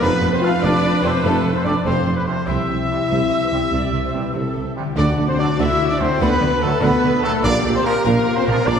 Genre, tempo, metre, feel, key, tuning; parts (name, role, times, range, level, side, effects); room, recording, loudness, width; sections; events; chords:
cinematic, heroic adventure film score; 97 BPM (dotted quarters); 12/8; straight; A4 = 442 Hz
rich symphonic violin section; melody; 0.0-8.8 s; A4 to F5; -28 LUFS; left 2 dB
clear symphonic violin section; second line; 0.0-8.8 s; C4 to G5; -32 LUFS; left 1 dB
mellow hollow silver concert flute; second line; 0.0-8.8 s; A5 to F6; -29 LUFS; left 1 dB
warm oboe; second line; 0.0-8.8 s; A4 to F5; -29 LUFS; equal
rich studio viola section; accompaniment; 0.0-8.8 s; F4 to B4; -28 LUFS; right 1 dB
mellow French horn section; sustained chords; 0.0-8.8 s; A3 to F4; -22 LUFS; left 3 dB
concert harp; arpeggios; 0.0-8.8 s; F2 to A4; -26 LUFS; left 2 dB
bright trumpet; stabs; 0.0-8.8 s; A4 to F5; -26 LUFS; right 2 dB
mellow tuba; bass; 0.0-8.8 s; F1 to D2; -25 LUFS; right 3 dB
rich chamber double bass section; bass; 0.0-8.7 s; F1 to D2; -26 LUFS; right 2 dB
rich symphonic cello section; bass; 0.0-8.8 s; F2 to D3; -26 LUFS; right 2 dB
clear trombone section; sustained chords; 0.4-8.5 s; A2 to A3; -32 LUFS; right 3 dB
timpani; percussion; 5.0-5.5 s; D3; -25 LUFS; right 1 dB
wet scoring stage reverb, RT60 1.9 s; heard from further back in the room; -16 LUFS; side -7 dB against mid
0.0-8.8 A section
0.0 F; 2.5 C; 5.0 D; 7.4 Bb